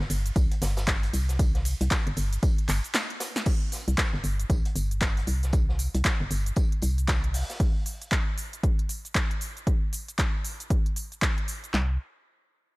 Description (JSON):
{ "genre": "deep house", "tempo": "116 BPM", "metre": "4/4", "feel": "swing 60% on 16ths", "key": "unclear", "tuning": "A4 = 438 Hz", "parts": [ { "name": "organ-like FM bass", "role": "bass", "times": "0.0-7.4, 11.7-12.0 s", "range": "G1 to C2", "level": "-26 LUFS", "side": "equal", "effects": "sidechain pumping" }, { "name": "vintage drum kit", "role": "drums", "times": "0.0-7.6 s", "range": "hi-hat, snare drum, tambourine", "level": "-41 LUFS", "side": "equal", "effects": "high-pass filter on hats, high-pass filter on snare, high-pass filter on perc, high-pass filter on room" }, { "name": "deep house drum kit", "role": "drums", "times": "0.1-11.7 s", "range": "cabasa, crash cymbal, handclaps, hi-hat, ride cymbal, snare drum", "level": "-31 LUFS", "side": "equal", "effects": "none" }, { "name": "deep house drum kit", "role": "drums", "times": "0.4-11.9 s", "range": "handclaps, kick drum, snare drum", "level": "-26 LUFS", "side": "equal", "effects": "none" } ], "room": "little or no reverb", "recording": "none", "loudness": "-24 LUFS", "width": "side -23 dB against mid", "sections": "0.0-3.5 A section; 3.5-11.7 B section; 11.7-12.8 C section", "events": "drop 0.0-3.5; break 2.9-3.5; drum fill 2.9-3.5", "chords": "none" }